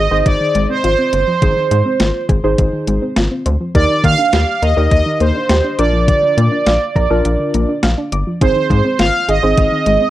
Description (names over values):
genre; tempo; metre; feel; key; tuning
synth-pop; 103 BPM; 4/4; straight; unclear; A4 = 440 Hz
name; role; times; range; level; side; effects
analog synth brass; melody; 0.0-10.1 s; C5 to F5; -16 LUFS; right 3 dB; chorus, ping-pong delay
muted felt-like synth keys; accompaniment; 0.0-10.0 s; C4 to C5; -20 LUFS; left 1 dB; chorus
soft round pluck; arpeggios; 0.0-10.1 s; D3 to D6; -22 LUFS; left 2 dB; chorus, ping-pong delay
rubbery square bass; bass; 0.0-10.0 s; G1 to Eb3; -16 LUFS; equal; none
clean 12-bit digital drum machine; drums; 0.3-10.0 s; hi-hat, kick drum, snare drum; -16 LUFS; equal; overdrive
room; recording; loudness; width
light reverb; worn, warbling old tape, cassette tape, warbly pitch drift; -12 LUFS; side -14 dB against mid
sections
0.0-10.1 A section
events
none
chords
0.0 Ab6; 3.7 Ebmaj7; 5.8 Bb; 8.4 Ab6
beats
0.25 0.84 | 1.42 2.00 2.58 3.17 | 3.75 4.33 4.91 5.50 | 6.08 6.66 7.25 7.83 | 8.41 8.99 9.57